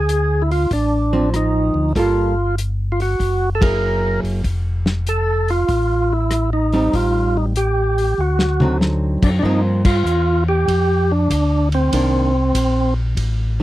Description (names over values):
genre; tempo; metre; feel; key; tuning
soul jazz organ trio; 96 BPM; 4/4; swing 67% on 8ths; unclear; A4 = 439 Hz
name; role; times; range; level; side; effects
percussive tonewheel organ; melody; 0.0-12.9 s; C4 to Bb4; -19 LUFS; right 1 dB; slow rotary speaker, overdrive
mellow tonewheel organ; bass; 0.0-13.6 s; F1 to G2; -19 LUFS; left 1 dB; slow rotary speaker
warm soul drum kit; drums; 0.1-13.4 s; crash cymbal, hi-hat, kick drum, ride cymbal, rim click, snare drum, toms; -22 LUFS; left 1 dB; none
archtop guitar, miked and amplified; accompaniment; 1.1-13.6 s; D3 to A4; -21 LUFS; right 2 dB; none
room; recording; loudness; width
little or no reverb; dry, close 1970s-style studio recording; -15 LUFS; side -15 dB against mid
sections
0.0-9.4 A section; 9.4-13.6 B section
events
band accent 3.5-3.8, 9.7-10.1; drum fill 8.2-8.8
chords
0.0 Dm7; 2.0 Gm9; 3.2 Gb9; 4.4 F; 6.9 Am7b5; 8.2 D7b9; 9.4 Gm7; 11.9 Cm9